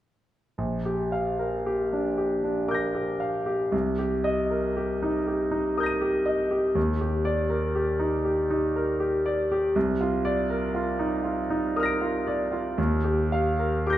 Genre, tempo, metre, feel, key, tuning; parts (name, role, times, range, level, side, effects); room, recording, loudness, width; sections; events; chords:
classical, impressionist solo piano; 59 BPM; 3/4; uneven beats, rubato; Bb major; A4 = 439 Hz
clear concert grand piano; solo; 0.6-14.0 s; Bb1 to Eb7; -24 LUFS; equal
wet recital hall reverb, RT60 1.7 s; -24 LUFS; side -13 dB against mid
0.6-14.0 A section
0.6 Bb6; 3.7 Cm7; 6.8 Ebmaj7; 9.8 Cm11; 12.8 Ebadd9